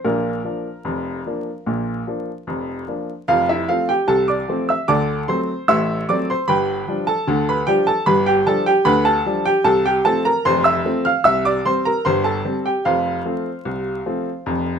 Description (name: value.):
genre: ragtime piano.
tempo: 75 BPM.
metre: 2/4.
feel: straight.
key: Bb major, F major from 3.3 s.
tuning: A4 = 440 Hz.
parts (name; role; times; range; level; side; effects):
clear upright piano; solo; 0.0-14.8 s; F1 to F6; -17 LUFS; equal; none.
room: light reverb.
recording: close, detailed microphones, vinyl crackle.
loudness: -17 LUFS.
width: side -7 dB against mid.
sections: 0.0-3.3 A section; 3.3-14.8 B section.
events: none.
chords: 0.0 Bb; 3.3 F; 4.9 D7; 6.5 G7; 9.7 F/C; 11.2 C; 12.8 F.